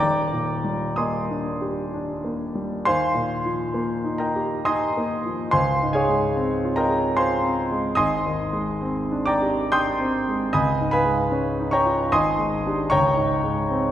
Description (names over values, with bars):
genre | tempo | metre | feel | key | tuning
classical, impressionist solo piano | 60-78 BPM | 3/4 | rubato | Eb major | A4 = 440 Hz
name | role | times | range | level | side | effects
clear grand piano | solo | 0.0-13.9 s | Eb1 to G6 | -20 LUFS | equal | none
room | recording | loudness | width
wet concert hall reverb, RT60 2.0 s | heard from further back in the room | -20 LUFS | side -11 dB against mid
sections
0.0-2.9 A section; 2.9-13.9 B section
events
none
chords
0.0 Ebmaj7; 2.9 Ebadd9; 5.5 Dbmaj7; 8.0 Abmaj7#11; 10.5 Db9; 12.1 Abmaj7#11; 12.9 Dbmaj7(no3)